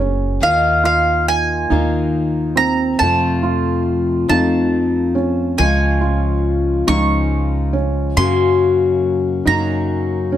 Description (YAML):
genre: acoustic folk duo or small band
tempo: 46 BPM (dotted quarters)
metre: 6/8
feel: straight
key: unclear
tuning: A4 = 439 Hz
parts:
  - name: picked steel-string acoustic guitar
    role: accompaniment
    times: 0.0-10.4 s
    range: F2 to Ab4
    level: -18 LUFS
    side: left 4 dB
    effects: none
  - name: felt-muted upright piano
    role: arpeggios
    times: 0.0-10.4 s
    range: C4 to F4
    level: -22 LUFS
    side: right 4 dB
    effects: none
  - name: upright bass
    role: bass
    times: 0.0-10.4 s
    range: Gb1 to Gb2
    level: -20 LUFS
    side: right 1 dB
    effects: none
  - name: mandolin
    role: melody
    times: 0.4-10.4 s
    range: F5 to Db6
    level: -18 LUFS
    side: right 2 dB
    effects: none
room: moderate studio reverb, RT60 0.7 s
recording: none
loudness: -14 LUFS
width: side -11 dB against mid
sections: 0.0-10.4 A section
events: none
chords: 0.4 Ebsus2; 3.0 F; 5.6 Db; 8.2 Gb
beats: | 0.41 1.71 | 3.00 4.30 | 5.59 6.88 | 8.18 9.47